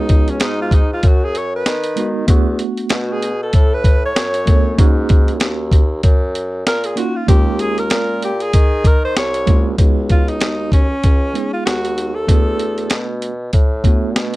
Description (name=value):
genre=hip hop, jazz-hop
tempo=96 BPM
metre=4/4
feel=swing 57% on 16ths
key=Db mixolydian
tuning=A4 = 438 Hz
part: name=breathy alto saxophone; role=melody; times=0.0-13.1 s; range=Db4 to Db5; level=-21 LUFS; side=equal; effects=none
part: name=tine electric piano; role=accompaniment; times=0.0-14.4 s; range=Ab3 to A4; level=-22 LUFS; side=right 3 dB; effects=medium stereo tremolo
part: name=mellow bassoon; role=bass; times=0.0-14.4 s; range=C2 to Eb3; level=-22 LUFS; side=equal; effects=none
part: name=boom bap sampler-style drum kit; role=drums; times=0.1-14.4 s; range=hi-hat, kick drum, snare drum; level=-13 LUFS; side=equal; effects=none
room=little or no reverb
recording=dark, warm production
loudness=-13 LUFS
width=side -19 dB against mid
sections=0.0-9.8 A section; 9.8-14.4 B section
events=alto saxophone solo 0.0-9.8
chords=0.0 Db9sus4; 2.3 E9sus4; 4.8 Ab9sus4; 7.3 Eb9sus4; 9.8 Db9sus4; 12.3 E9sus4